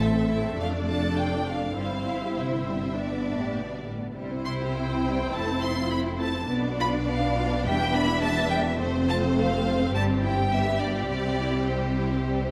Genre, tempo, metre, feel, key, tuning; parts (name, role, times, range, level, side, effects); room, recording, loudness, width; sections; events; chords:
quick classical-period movement for string orchestra; 102 BPM; 4/4; straight; C major; A4 = 440 Hz
rich symphonic violin section; melody; 0.0-12.5 s; C5 to C6; -34 LUFS; equal
rich symphonic violin section; second line; 0.0-12.5 s; G3 to E5; -33 LUFS; equal
warm symphonic viola section; accompaniment; 0.0-12.5 s; G3 to E4; -32 LUFS; equal
rich symphonic cello section; bass; 0.0-12.5 s; E2 to C3; -33 LUFS; equal
rich symphonic double bass section; bass; 0.0-12.5 s; E1 to C2; -34 LUFS; equal
wet concert hall reverb, RT60 2.3 s; -26 LUFS; mono
0.0-12.5 A section
0.0 Am; 0.6 Dm/F; 1.8 C/G; 3.0 G; 4.2 C; 5.3 Fmaj7; 6.5 Bdim; 7.7 Em7; 8.8 F; 9.9 C/G; 10.5 G7; 11.1 C